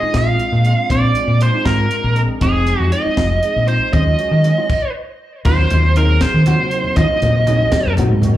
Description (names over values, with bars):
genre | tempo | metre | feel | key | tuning
electric jazz fusion | 79 BPM (dotted quarters) | 6/8 | straight | Eb dorian | A4 = 440 Hz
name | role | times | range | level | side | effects
biting lead guitar | melody | 0.0-7.9 s | Ab4 to F5 | -18 LUFS | right 2 dB | overdrive, slapback echo
tine electric piano | accompaniment | 0.0-8.4 s | Gb3 to C5 | -25 LUFS | left 1 dB | ensemble chorus, slapback echo
mellow electric guitar | stabs | 0.0-8.2 s | C4 to Gb4 | -25 LUFS | equal | wide subtle chorus, slapback echo
fingered electric bass | bass | 0.0-8.4 s | F1 to Eb3 | -15 LUFS | equal | none
tight funk drum kit | drums | 0.1-8.3 s | crash cymbal, hi-hat, kick drum, snare drum | -21 LUFS | equal | none
congas | percussion | 5.4-8.3 s | none | -22 LUFS | left 1 dB | none
room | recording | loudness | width
light reverb, small room reverb | live gig heard through the venue's PA, club reverb | -13 LUFS | side -13 dB against mid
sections
0.0-5.5 A section; 5.5-8.4 B section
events
stop 4.7-5.5; tine electric piano fill 7.7-8.4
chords
0.0 Bb9; 2.4 Fm7; 3.9 Ebm11; 5.5 Ebm69